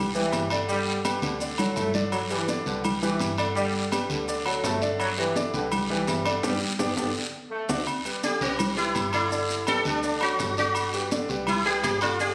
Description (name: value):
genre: latin, salsa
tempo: 167 BPM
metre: 4/4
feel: straight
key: G major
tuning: A4 = 442 Hz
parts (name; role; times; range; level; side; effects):
- bright concert grand piano; accompaniment; 0.0-12.3 s; D3 to D5; -32 LUFS; equal; none
- deep dub fingered electric bass; bass; 0.0-12.3 s; G1 to D2; -38 LUFS; equal; none
- bright trombone section; second line; 0.1-7.7 s; D3 to A3; -33 LUFS; equal; none
- maracas; percussion; 0.1-12.3 s; none; -42 LUFS; equal; none
- congas; percussion; 0.2-12.3 s; none; -35 LUFS; equal; none
- guiro; percussion; 0.3-12.3 s; none; -37 LUFS; equal; none
- timbales and agogo bells; percussion; 0.3-12.2 s; none; -34 LUFS; equal; none
- sitar; melody; 8.2-12.3 s; C4 to A4; -28 LUFS; equal; none
room: moderate studio reverb, RT60 0.8 s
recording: recorded on a phone in the room, studio reverb, compression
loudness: -26 LUFS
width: mono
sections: 0.0-7.9 A section; 7.9-12.3 B section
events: drum fill 1.2-2.1, 6.8-7.9; band accent 6.4-7.9; sitar solo 7.9-12.3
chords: 0.0 Cmaj7; 0.7 G; 1.4 D; 2.1 G; 4.3 D; 5.0 G; 7.2 D7; 7.9 G; 8.6 Cmaj7; 9.3 G; 10.0 D; 10.8 G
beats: 0.33 | 0.69 1.04 1.41 1.76 | 2.12 2.48 2.84 3.20 | 3.56 3.92 4.28 4.64 | 5.00 5.36 5.71 6.08 | 6.43 6.79 7.15 7.51 | 7.87 8.23 8.59 8.95 | 9.31 9.67 10.03 10.39 | 10.75 11.11 11.47 11.84 | 12.20